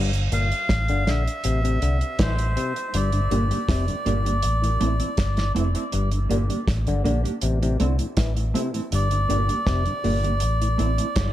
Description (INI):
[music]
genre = dub reggae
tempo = 80 BPM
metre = 4/4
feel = straight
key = G dorian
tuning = A4 = 435 Hz
[part]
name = auto-wah clav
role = arpeggios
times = 0.0-10.2 s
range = G2 to E3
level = -30 LUFS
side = left 5 dB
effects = overdrive, dub echo
[part]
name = vintage muted fingered electric bass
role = bass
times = 0.0-11.3 s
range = F1 to C2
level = -23 LUFS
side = equal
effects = none
[part]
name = mellow tonewheel organ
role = accompaniment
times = 0.1-11.1 s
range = G2 to E4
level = -32 LUFS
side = left 1 dB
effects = chorus vibrato, slow rotary speaker, high-pass filter
[part]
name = damped 70s drum kit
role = drums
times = 0.1-11.3 s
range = hi-hat, kick drum, snare drum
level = -27 LUFS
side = right 1 dB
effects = none
[part]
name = melodica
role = melody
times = 0.3-11.3 s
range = C5 to F5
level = -28 LUFS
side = equal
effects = dub echo
[part]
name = mellow electric guitar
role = accompaniment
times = 0.3-11.1 s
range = A3 to G4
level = -30 LUFS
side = right 4 dB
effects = high-pass filter, dub echo
[sound]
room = light reverb, small room reverb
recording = none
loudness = -20 LUFS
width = side -13 dB against mid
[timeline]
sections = 0.0-11.3 A section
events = none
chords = 0.0 Gm; 1.4 Am; 2.9 Gm; 4.4 Am; 5.9 Gm; 7.4 Am; 8.9 Gm; 10.4 Am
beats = 0.70 1.45 2.19 | 2.94 3.69 4.43 5.18 | 5.93 6.68 7.42 8.17 | 8.92 9.66 10.41 11.16